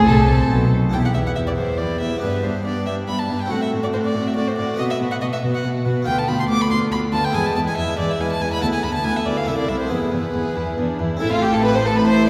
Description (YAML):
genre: classical, baroque-style concerto movement with solo episodes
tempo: 140 BPM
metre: 3/4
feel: straight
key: E minor, A minor from 6.1 s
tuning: A4 = 440 Hz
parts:
  - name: warm chamber violin section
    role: melody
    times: 0.0-12.3 s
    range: F#4 to C6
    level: -33 LUFS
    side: equal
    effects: none
  - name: warm violin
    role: melody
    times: 0.0-12.3 s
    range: E4 to D6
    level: -26 LUFS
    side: equal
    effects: none
  - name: warm chamber violin section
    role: second line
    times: 0.0-12.3 s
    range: D4 to C5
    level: -32 LUFS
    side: equal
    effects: none
  - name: dark chamber viola section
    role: accompaniment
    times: 0.0-12.3 s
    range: G#3 to E4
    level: -29 LUFS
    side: equal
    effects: none
  - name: harpsichord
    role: accompaniment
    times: 0.0-12.3 s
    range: C2 to B4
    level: -28 LUFS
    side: equal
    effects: none
  - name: rich chamber double bass section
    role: bass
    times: 0.0-0.9, 11.2-12.3 s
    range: A1 to C2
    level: -25 LUFS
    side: equal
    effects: none
  - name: warm chamber cello section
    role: bass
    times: 0.0-12.3 s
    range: C2 to C3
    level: -25 LUFS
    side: equal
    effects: none
room: wet concert hall reverb, RT60 2.4 s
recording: heard from further back in the room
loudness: -20 LUFS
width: mono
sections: 0.9-11.2 A section; 11.2-12.3 B section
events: none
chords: 0.0 Am; 0.9 Em; 2.2 G; 3.5 F#dim/A; 4.8 B5; 6.1 Bdim/D; 7.3 E; 8.6 E5/D; 9.5 Am/C; 9.9 E; 11.2 Am